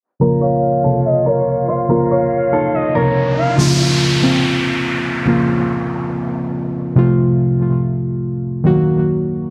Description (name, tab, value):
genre	hip hop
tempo	142 BPM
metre	4/4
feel	half-time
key	Bb harmonic minor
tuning	A4 = 440 Hz
part	concert harp	melody	0.2-5.1 s	A4 to Db5	-21 LUFS	equal	tape echo
part	muted felt-like synth keys	accompaniment	0.2-9.5 s	C3 to Gb4	-18 LUFS	equal	chorus
part	breathy bright small flute group	sustained chords	0.2-3.6 s	F4 to F5	-28 LUFS	equal	none
part	gliding portamento lead	second line	0.4-3.6 s	Db5 to F5	-23 LUFS	equal	chorus, phaser, tape echo
part	riser and downlifter	sound effects	2.7-7.0 s	none	-24 LUFS	equal	none
room	moderate recital hall reverb, RT60 1.4 s, small room ambience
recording	low-pass filter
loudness	-16 LUFS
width	mono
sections	0.2-3.6 A section; 3.6-9.5 B section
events	filter sweep 0.2-3.6; riser 2.7-3.6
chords	0.2 Bbm; 7.0 F; 8.7 Ebm